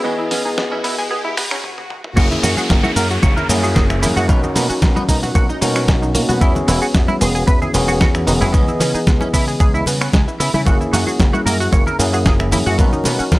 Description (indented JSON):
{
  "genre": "nu-disco, nu disco",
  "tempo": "113 BPM",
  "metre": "4/4",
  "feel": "straight",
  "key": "unclear",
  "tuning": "A4 = 439 Hz",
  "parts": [
    { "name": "bell-like tine electric piano", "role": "accompaniment", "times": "0.0-13.4 s", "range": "E3 to D#5", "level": "-21 LUFS", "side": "equal", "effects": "sidechain pumping, analog delay" },
    { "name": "analog pluck", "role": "arpeggios", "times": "0.0-13.4 s", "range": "A#3 to G#4", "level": "-24 LUFS", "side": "right 2 dB", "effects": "chorus, sidechain pumping, analog delay" },
    { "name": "clean electric guitar", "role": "riff", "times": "0.0-13.2 s", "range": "G#3 to C#5", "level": "-24 LUFS", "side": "right 1 dB", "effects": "analog chorus" },
    { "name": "riser, swell and downlifter", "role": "sound effects", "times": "0.0-6.4 s", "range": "none", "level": "-27 LUFS", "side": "equal", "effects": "none" },
    { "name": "dusty soul sampler-style drum kit", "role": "drums", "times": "0.3-13.4 s", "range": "crash cymbal, finger snaps, hi-hat, shaker, snare drum, toms", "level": "-21 LUFS", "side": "equal", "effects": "none" },
    { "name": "slap bass with an envelope filter", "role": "bass", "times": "2.2-13.4 s", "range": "E1 to C#3", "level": "-20 LUFS", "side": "equal", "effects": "none" },
    { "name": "electronic kick drum", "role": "drums", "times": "2.2-13.4 s", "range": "none", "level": "-15 LUFS", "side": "equal", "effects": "overdrive" },
    { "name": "congas", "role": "percussion", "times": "2.2-13.4 s", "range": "none", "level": "-26 LUFS", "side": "left 2 dB", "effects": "none" }
  ],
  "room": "light reverb, digital ambience",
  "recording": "dry, gritty hardware recording, high-pass filter",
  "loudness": "-13 LUFS",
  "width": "side -19 dB against mid",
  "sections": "0.0-2.2 A section; 2.2-13.4 B section",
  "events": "build-up 0.0-2.2; riser 0.0-1.6; filter sweep 0.0-2.2; swell 1.1-2.2; drum fill 1.6-2.2; stop 1.6-2.2; drop 2.2-13.4",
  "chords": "0.0 C#m7; 2.2 F#9; 4.3 Bmaj7; 6.4 E6; 8.5 C#m7; 10.7 F#9; 12.8 Bmaj7"
}